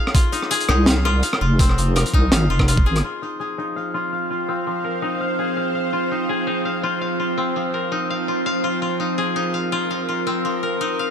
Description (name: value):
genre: half-time drum and bass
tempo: 166 BPM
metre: 4/4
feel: swing 54% on 16ths, half-time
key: F minor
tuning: A4 = 440 Hz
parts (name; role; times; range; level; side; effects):
- koto; arpeggios; 0.0-11.1 s; F3 to F5; -23 LUFS; left 3 dB; low-pass filter, ping-pong delay
- crunchy breakbeat drum kit; drums; 0.1-3.0 s; hi-hat, rim click, snare drum; -21 LUFS; equal; none
- electronic kick drum; drums; 0.1-2.8 s; none; -17 LUFS; equal; overdrive
- deep soft wobble bass; bass; 0.7-3.0 s; F1 to C2; -18 LUFS; equal; chorus
- bowed-like drone; sustained chords; 3.6-11.1 s; F3 to F5; -24 LUFS; right 2 dB; built-in reverb, sidechain pumping
room: moderate lush hall reverb, RT60 1.7 s, small room ambience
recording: none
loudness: -18 LUFS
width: side -7 dB against mid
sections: 0.0-3.0 A section; 3.0-11.1 B section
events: drop 0.0-3.0; filter sweep on koto 3.0-11.1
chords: 0.0 F5